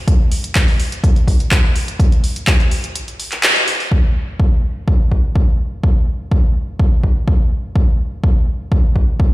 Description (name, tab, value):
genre	house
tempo	125 BPM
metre	4/4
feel	straight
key	none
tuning	none
part	electronic kick drum	drums	0.1-9.3 s	none	-13 LUFS	equal	overdrive
part	punchy analog drum machine	drums	0.1-3.9 s	handclaps, hi-hat	-18 LUFS	equal	overdrive, sidechain pumping on hats, low-pass filter on hats, low-pass filter on snare, low-pass filter on room
part	egg shaker	percussion	0.1-9.3 s	none	barely audible	none	none
room	light reverb, digital ambience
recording	played on a big sound system in a bare room, large studio reverb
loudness	-13 LUFS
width	side -18 dB against mid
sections	0.0-3.9 A section; 3.9-9.3 B section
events	kick drops out 3.0-3.9; band accent 3.4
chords	none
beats	| 0.08 0.56 1.04 1.52 | 2.00 2.48 2.96 3.44 | 3.92 4.40 4.88 5.36 | 5.84 6.32 6.80 7.28 | 7.76 8.24 8.72 9.20